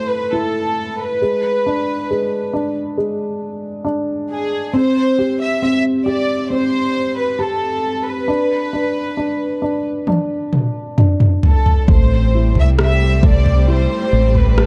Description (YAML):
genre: pop ballad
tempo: 68 BPM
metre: 4/4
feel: straight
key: A minor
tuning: A4 = 440 Hz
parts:
  - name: warm studio violin section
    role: melody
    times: 0.0-14.7 s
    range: G#4 to E5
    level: -23 LUFS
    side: equal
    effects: none
  - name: dark upright piano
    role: accompaniment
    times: 0.0-14.7 s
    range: G#3 to G4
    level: -23 LUFS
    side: equal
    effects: none
  - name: deep house drum kit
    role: drums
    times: 10.1-14.7 s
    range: kick drum, rim click, toms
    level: -16 LUFS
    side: equal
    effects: overdrive
  - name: dark studio string section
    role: sustained chords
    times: 11.9-14.7 s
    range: G3 to C4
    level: -27 LUFS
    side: equal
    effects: none
  - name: fretless electric bass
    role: bass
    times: 11.9-14.7 s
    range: A1 to C2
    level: -16 LUFS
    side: equal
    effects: none
room: small room ambience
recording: dark, warm production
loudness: -17 LUFS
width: mono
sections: 0.0-14.7 A section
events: drum fill 10.1-11.9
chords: 0.0 A5; 1.2 G#dim; 4.7 C5; 8.3 N.C.; 11.9 Am7